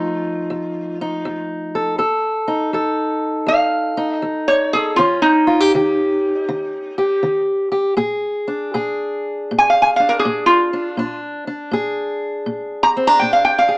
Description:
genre	acoustic country blues, solo or duo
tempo	80 BPM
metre	4/4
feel	swing 65% on 8ths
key	Bb mixolydian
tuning	A4 = 440 Hz
part	lap resonator guitar	melody	0.0-13.8 s	Eb4 to Bb5	-14 LUFS	equal	none
part	fingerpicked steel-string acoustic guitar	accompaniment	0.0-13.8 s	F2 to A4	-19 LUFS	equal	none
room	light reverb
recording	small speaker sound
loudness	-15 LUFS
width	side -25 dB against mid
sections	0.0-13.8 A section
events	resonator guitar played with a steel bar solo 0.0-13.8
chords	0.0 F7; 5.0 Eb7; 8.0 Bb7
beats	0.49 1.24 | 1.99 2.73 3.48 4.23 | 4.97 5.72 6.47 7.21 | 7.96 8.71 9.45 10.20 | 10.95 11.70 12.45 13.20

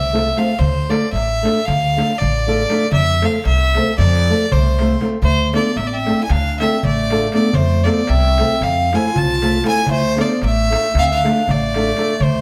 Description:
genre	balkan folk, Balkan wedding band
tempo	233 BPM (eighths)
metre	9/8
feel	straight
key	D minor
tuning	A4 = 440 Hz
part	clear violin	melody	0.0-12.4 s	C5 to A5	-21 LUFS	equal	none
part	upright bass	bass	0.0-12.4 s	A1 to F2	-21 LUFS	equal	none
part	darbuka	percussion	0.0-12.4 s	none	-26 LUFS	equal	none
part	flamenco guitar	accompaniment	0.1-12.1 s	A3 to A4	-23 LUFS	equal	none
part	mellow clarinet	second line	4.5-12.4 s	A3 to F4	-26 LUFS	equal	none
room	wet stone room reverb, RT60 1.2 s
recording	band playing live in one room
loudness	-16 LUFS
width	mono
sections	0.0-12.4 A section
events	none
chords	0.0 F; 0.6 Dm; 2.9 F; 5.2 Dm; 7.6 F; 9.9 Dm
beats	0.09 0.34 | 0.60 0.86 1.11 1.37 1.63 1.89 2.15 2.40 2.66 | 2.92 3.18 3.43 3.69 3.95 4.21 4.46 4.72 4.98 | 5.24 5.50 5.75 6.01 6.27 6.53 6.78 7.04 7.30 | 7.56 7.82 8.07 8.33 8.59 8.85 9.11 9.36 9.62 | 9.88 10.14 10.40 10.65 10.91 11.17 11.43 11.69 11.95 | 12.21

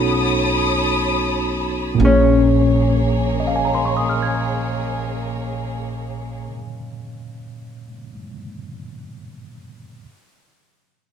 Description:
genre	jazz ballad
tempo	44 BPM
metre	4/4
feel	swing 67% on 8ths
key	Bb minor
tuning	A4 = 438 Hz
part	hollow-body jazz guitar	melody	0.0-6.5 s	Db4 to F#4	-22 LUFS	left 4 dB	none
part	tine electric piano	accompaniment	0.0-10.0 s	Bb2 to Ab6	-21 LUFS	right 1 dB	medium stereo tremolo
part	warm studio string section	sustained chords	0.0-6.5 s	Bb3 to D#6	-24 LUFS	left 2 dB	none
part	upright bass	bass	0.0-6.5 s	Bb1 to B1	-23 LUFS	equal	none
room	light reverb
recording	none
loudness	-16 LUFS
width	side -8 dB against mid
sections	0.0-2.0 A section; 2.0-7.5 B section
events	slowing down 0.0-2.0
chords	0.0 B9; 2.0 Bbm9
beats	0.66 | 2.00 3.38 4.76 6.14

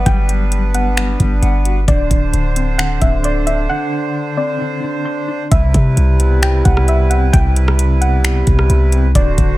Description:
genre	hip hop, atmospheric cloud-rap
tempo	132 BPM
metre	4/4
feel	half-time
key	unclear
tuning	A4 = 440 Hz
part	soft round pluck	melody	0.0-9.6 s	D5 to G5	-22 LUFS	equal	chorus, low-pass filter, tape echo
part	accordion	sustained chords	0.0-9.6 s	C3 to C5	-21 LUFS	right 2 dB	sidechain pumping
part	mellow electric guitar	arpeggios	0.0-9.6 s	C3 to C6	-22 LUFS	left 2 dB	tremolo, low-pass filter, tape echo
part	warm 808-style bass	bass	0.0-9.6 s	D1 to C3	-14 LUFS	equal	none
part	smooth R&B drum kit	drums	0.1-9.5 s	finger snaps, hi-hat, kick drum, rim click	-16 LUFS	equal	none
room	digital ambience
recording	none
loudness	-12 LUFS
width	side -17 dB against mid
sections	0.0-5.5 A section; 5.5-9.6 B section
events	break 3.7-5.5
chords	0.0 Gmaj7; 1.9 D7; 5.5 Cmaj7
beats	| 0.06 0.52 0.97 1.43 | 1.88 2.33 2.79 3.24 | 3.70 4.15 4.61 5.06 | 5.52 5.97 6.42 6.88 | 7.33 7.79 8.24 8.70 | 9.15

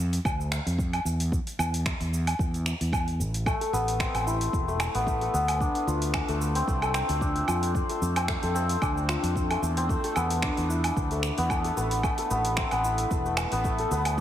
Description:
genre	organic downtempo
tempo	112 BPM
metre	4/4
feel	swing 55% on 16ths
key	A minor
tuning	A4 = 440 Hz
part	fretless electric bass	bass	0.0-14.2 s	E1 to F2	-29 LUFS	equal	sidechain pumping
part	deep house drum kit	drums	0.1-14.2 s	cabasa, finger snaps, hi-hat, woodblock	-32 LUFS	right 1 dB	overdrive
part	electronic kick drum	drums	0.2-14.2 s	none	-30 LUFS	equal	overdrive
part	santur	arpeggios	3.5-14.2 s	A3 to A4	-28 LUFS	left 2 dB	ping-pong delay, shimmer reverb
room	moderate concert hall reverb, RT60 1.7 s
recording	heavily compressed radio sound, faint mains hum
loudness	-24 LUFS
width	side -11 dB against mid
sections	0.0-14.2 A section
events	none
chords	0.0 Dmadd9; 1.3 Esus4; 3.5 Amadd9; 5.6 Dm7; 7.8 F6; 9.9 E7sus4; 12.0 Asus2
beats	0.25 0.79 | 1.32 1.86 2.39 2.93 | 3.46 4.00 4.54 5.07 | 5.61 6.14 6.68 7.21 | 7.75 8.29 8.82 9.36 | 9.89 10.43 10.96 11.50 | 12.04 12.57 13.11 13.64 | 14.18

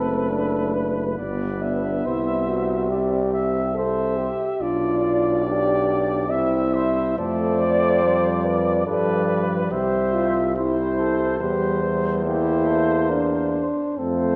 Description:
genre	classical, brass quintet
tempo	71 BPM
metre	3/4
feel	rubato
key	C major from 7.2 s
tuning	A4 = 438 Hz
part	dark cornet	melody	0.0-14.4 s	G4 to E5	-31 LUFS	equal	none
part	warm flugelhorn	second line	0.0-14.4 s	B4 to E5	-30 LUFS	equal	none
part	mellow French horn	accompaniment	0.0-14.4 s	C4 to C5	-26 LUFS	equal	none
part	mellow trombone	accompaniment	0.0-14.4 s	F3 to D4	-31 LUFS	equal	none
part	bright bass trombone	bass	0.0-14.4 s	F#1 to G2	-28 LUFS	equal	none
room	wet recital hall reverb, RT60 1.8 s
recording	none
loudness	-22 LUFS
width	mono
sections	0.0-14.4 A section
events	none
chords	0.0 D7/F#; 1.2 G; 2.0 C; 4.6 G7/B; 6.3 C; 7.2 Dm7/F; 8.9 G7; 9.7 C; 11.4 C/E; 12.2 C7/E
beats	0.31 1.18 | 2.05 2.90 3.75 | 4.61 5.46 6.29 | 7.18 8.03 8.87 | 9.71 10.56 11.40 | 12.24 13.10 13.99

